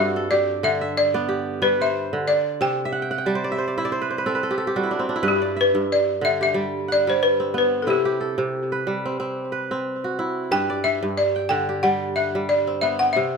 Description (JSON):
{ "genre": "west african traditional, West African string and xylophone music", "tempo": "91 BPM", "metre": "4/4", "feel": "swing 56% on 16ths", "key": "G major", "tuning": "A4 = 440 Hz", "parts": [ { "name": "balafon", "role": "melody", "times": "0.0-13.4 s", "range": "G4 to G5", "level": "-21 LUFS", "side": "left 2 dB", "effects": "none" }, { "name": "kora", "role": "arpeggios", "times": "0.0-13.4 s", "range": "G2 to A5", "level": "-24 LUFS", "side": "right 2 dB", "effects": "tape echo" } ], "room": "light reverb", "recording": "close, detailed microphones", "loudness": "-20 LUFS", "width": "side -5 dB against mid", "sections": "0.0-5.2 A section; 5.2-13.4 B section", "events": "kora fill 2.9-5.2", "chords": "0.0 G; 2.6 C; 5.2 G; 7.9 C; 10.5 G" }